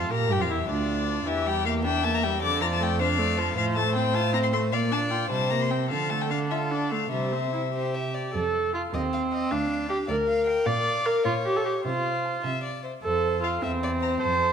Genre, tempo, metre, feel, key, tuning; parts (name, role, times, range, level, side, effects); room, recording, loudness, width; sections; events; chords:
quick classical-period movement for string quartet; 103 BPM (dotted quarters); 6/8; straight; D minor, F major from 3.6 s; A4 = 436 Hz
rich violin; melody; 0.0-14.1 s; D5 to D6; -30 LUFS; left 9 dB
rich violin; second line; 0.0-14.5 s; F4 to G5; -32 LUFS; left 4 dB
rich viola; accompaniment; 0.0-14.5 s; D3 to D5; -27 LUFS; right 1 dB
warm cello; bass; 0.0-14.5 s; D2 to D3; -30 LUFS; right 3 dB
moderate scoring stage reverb, RT60 1.5 s; -23 LUFS; side -7 dB against mid
0.0-8.3 A section; 8.3-14.5 B section
0.1 Bb; 1.3 Em7b5; 2.4 Dm/F; 3.6 F/A; 4.7 Bb; 5.3 C5; 5.9 Dm; 7.1 C; 8.3 F; 8.9 F5/Eb; 9.5 Bb/D; 10.7 Bb; 11.8 F/C; 12.4 C; 13.0 F; 13.6 C/E